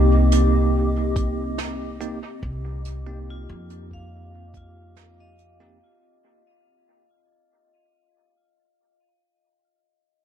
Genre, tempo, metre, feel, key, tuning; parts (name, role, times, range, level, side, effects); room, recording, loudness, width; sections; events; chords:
ambient dub; 71 BPM; 4/4; straight; C minor; A4 = 440 Hz
warbly tape-like pad; sustained chords; 0.0-5.8 s; C4 to D6; -28 LUFS; left 3 dB; chorus, built-in reverb
bell-like tine electric piano; stabs; 0.0-5.8 s; Bb3 to G4; -26 LUFS; right 2 dB; fast stereo tremolo, dub echo
upright bass; bass; 0.0-5.8 s; C2 to F2; -22 LUFS; equal
jazz brush drum kit; drums; 0.3-5.6 s; hi-hat, snare drum; -36 LUFS; right 6 dB; dub echo
electronic kick drum; drums; 1.2-4.7 s; -27 LUFS; equal; overdrive
vibraphone with hard mallets; arpeggios; 3.3-9.1 s; F4 to F5; -54 LUFS; left 2 dB; tape echo
light reverb, studio reverb; dark, warm production; -20 LUFS; side -9 dB against mid
0.0-5.8 A section
fade-out 0.0-5.8; filter sweep on tine electric piano 0.0-5.8
0.0 Cm7